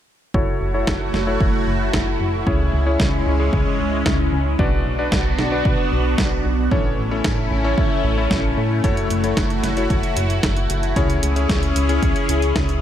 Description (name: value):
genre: italo disco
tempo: 113 BPM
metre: 4/4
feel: straight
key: F# minor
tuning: A4 = 444 Hz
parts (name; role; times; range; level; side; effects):
- lush unison pad; sustained chords; 0.5-12.8 s; G#3 to G#4; -23 LUFS; left 1 dB; chorus, phaser
- bright electric grand piano; stabs; 0.3-12.8 s; C#4 to D5; -25 LUFS; left 2 dB; low-pass filter, ping-pong delay
- chorused synth bass; bass; 0.3-12.8 s; F#1 to A2; -22 LUFS; equal; none
- electronic kick drum; drums; 0.3-12.7 s; none; -22 LUFS; equal; overdrive
- clean 12-bit digital drum machine; drums; 0.9-12.8 s; hi-hat, snare drum; -26 LUFS; right 1 dB; none
room: light reverb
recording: none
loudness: -17 LUFS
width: side -10 dB against mid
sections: 0.3-12.8 A section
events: filter sweep on electric grand piano 0.3-12.8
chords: 0.3 F#m7; 2.5 C#m; 4.6 Bm; 6.7 A; 8.8 F#m7; 11.0 C#m